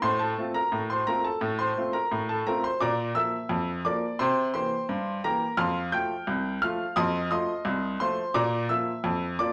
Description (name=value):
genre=ragtime piano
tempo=86 BPM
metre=2/4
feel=straight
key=F major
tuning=A4 = 440 Hz
part: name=clear upright piano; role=solo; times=0.0-9.5 s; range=C2 to G6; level=-27 LUFS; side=equal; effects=none
room=wet club reverb, RT60 0.5 s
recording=none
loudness=-28 LUFS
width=mono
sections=0.0-9.5 A section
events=none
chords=0.0 F/A; 2.8 Bb; 4.2 C7; 5.6 F; 7.0 F7; 8.4 Bb